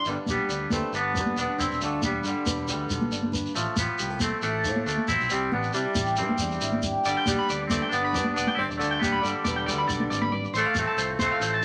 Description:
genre	highlife guitar band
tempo	137 BPM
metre	4/4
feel	straight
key	G mixolydian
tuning	A4 = 439 Hz
part	picked steel-string acoustic guitar	accompaniment	0.0-11.6 s	G2 to B4	-35 LUFS	equal	none
part	electric guitar at the edge of break-up	arpeggios	0.0-0.1, 7.1-11.6 s	C5 to B5	-31 LUFS	equal	none
part	twangy electric guitar	melody	0.1-11.6 s	D3 to E4	-32 LUFS	equal	none
part	bright tenor saxophone	second line	0.1-11.6 s	D3 to C4	-33 LUFS	equal	none
part	fingered electric bass	bass	0.1-11.6 s	E1 to C3	-37 LUFS	equal	none
part	shekere	percussion	0.1-11.5 s	none	-35 LUFS	equal	none
part	congas	percussion	0.3-11.6 s	none	-34 LUFS	equal	none
room	moderate studio reverb, RT60 0.5 s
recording	none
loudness	-26 LUFS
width	mono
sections	0.1-11.6 A section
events	none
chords	0.1 G; 3.6 F/A; 5.3 Cadd9; 7.1 G; 10.5 F/A

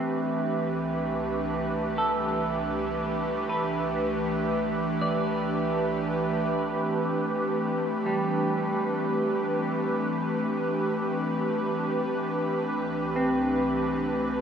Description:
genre	ambient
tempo	59 BPM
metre	3/4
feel	straight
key	A minor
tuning	A4 = 439 Hz
part	airy breathy pad	sustained chords	0.0-14.4 s	C2 to B4	-26 LUFS	equal	chorus, shimmer reverb
part	semi-hollow electric guitar	arpeggios	0.0-14.4 s	G3 to D5	-32 LUFS	equal	spring reverb, diffuse ambient delay, shimmer reverb
part	glass harmonica	texture	0.0-14.4 s	C4 to E5	-35 LUFS	right 4 dB	shimmer reverb
room	wet huge ambient reverb, RT60 8.7 s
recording	studio ambience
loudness	-25 LUFS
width	side -7 dB against mid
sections	0.0-6.5 A section; 6.5-14.4 A section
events	none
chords	0.4 Cmaj7; 6.5 Am7; 12.6 Cmaj7

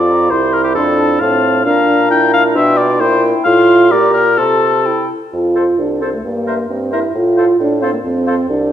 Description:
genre	quick classical-period movement for wind quintet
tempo	133 BPM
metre	2/4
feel	straight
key	F major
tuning	A4 = 441 Hz
part	warm oboe	second line	0.0-8.3 s	G4 to G5	-16 LUFS	left 3 dB	none
part	mellow French horn	accompaniment	0.0-8.7 s	A3 to A4	-15 LUFS	right 1 dB	none
part	mellow clarinet	accompaniment	0.0-8.3 s	D4 to Bb4	-23 LUFS	right 6 dB	none
part	warm bassoon	bass	0.0-8.7 s	C2 to C3	-17 LUFS	right 2 dB	none
part	mellow concert flute	melody	0.1-8.4 s	C5 to C6	-23 LUFS	left 8 dB	none
room	wet recital hall reverb, RT60 1.7 s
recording	none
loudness	-11 LUFS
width	side -10 dB against mid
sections	0.0-5.3 A section; 5.3-8.7 B section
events	none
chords	0.3 C; 0.8 F; 1.7 Bb; 2.6 G7/B; 3.0 C7/Bb; 3.5 F/A; 3.9 Gm/Bb; 4.4 F/C; 4.9 C; 5.3 F; 6.2 C7/G; 7.2 F/A; 8.0 F5

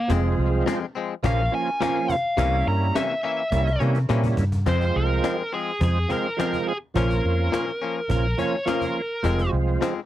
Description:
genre	straight-eighth soul blues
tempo	105 BPM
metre	4/4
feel	straight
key	F minor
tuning	A4 = 436 Hz
part	biting lead guitar	melody	0.0-9.5 s	Bb3 to Bb5	-26 LUFS	equal	overdrive
part	overdriven tonewheel organ	accompaniment	0.1-9.9 s	F3 to Ab4	-26 LUFS	right 5 dB	chorus vibrato, slow rotary speaker
part	warm horn section	sustained chords	0.1-4.1 s	C4 to Bb4	-35 LUFS	equal	none
part	direct-recorded clean electric guitar	stabs	0.1-10.0 s	F2 to Db4	-27 LUFS	left 8 dB	none
part	vintage muted fingered electric bass	bass	0.1-9.8 s	F1 to C3	-22 LUFS	equal	none
part	cajon	drums	0.1-10.0 s	none	-32 LUFS	equal	none
room	little or no reverb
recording	none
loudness	-21 LUFS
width	side -13 dB against mid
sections	0.0-4.7 A section; 4.7-10.1 B section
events	lead electric guitar solo 0.0-4.7; drum fill 3.5-4.7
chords	0.1 Fm; 1.2 Bbm; 2.4 C7b9; 4.7 Fm; 7.0 Bbm; 9.2 Fm

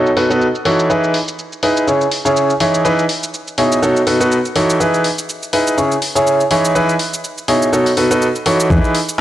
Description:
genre	piano house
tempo	123 BPM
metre	4/4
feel	swing 56% on 16ths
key	E major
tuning	A4 = 443 Hz
part	bright grand piano	riff	0.0-9.0 s	B2 to C#5	-13 LUFS	equal	sidechain pumping
part	electronic cabasa and hi-hat	drums	0.1-9.2 s	none	-22 LUFS	left 1 dB	low-pass filter on perc, low-pass filter on hats, low-pass filter on snare
part	solid FM bass	bass	8.7-8.8 s	E2	-12 LUFS	equal	sidechain pumping
part	electronic kick drum	drums	8.7-8.8 s	none	-17 LUFS	left 1 dB	none
room	moderate lush hall reverb, RT60 2.0 s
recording	dry, gritty hardware recording, cassette tape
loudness	-13 LUFS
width	side -13 dB against mid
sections	0.0-8.7 A section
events	none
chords	0.0 B7; 0.9 Emaj7; 1.9 C#m; 2.6 Emaj7; 3.8 B7; 4.8 Emaj7; 5.8 C#m; 6.5 Emaj7; 7.7 B7; 8.7 Emaj7

